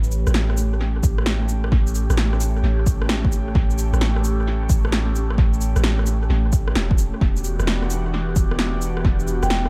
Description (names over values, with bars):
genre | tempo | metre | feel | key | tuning
future garage | 131 BPM | 4/4 | swing 67% on 16ths | unclear | A4 = 440 Hz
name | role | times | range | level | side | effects
airy breathy pad | sustained chords | 0.0-9.7 s | E3 to G4 | -30 LUFS | equal | chorus, phaser, sidechain pumping
soft 808-style bass | bass | 0.0-9.7 s | E1 to A1 | -23 LUFS | equal | sidechain pumping
electronic shaker, rim click and snare drum | drums | 0.0-9.7 s | none | -29 LUFS | equal | overdrive, dub echo
electronic kick drum | drums | 1.0-9.2 s | none | -21 LUFS | equal | overdrive
vibraphone with medium mallets | melody | 9.4-9.7 s | G5 | -26 LUFS | equal | none
room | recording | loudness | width
digital ambience | echo-heavy mix, vinyl crackle | -20 LUFS | mono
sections
0.0-9.7 A section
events
none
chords
0.0 A7; 7.2 Em7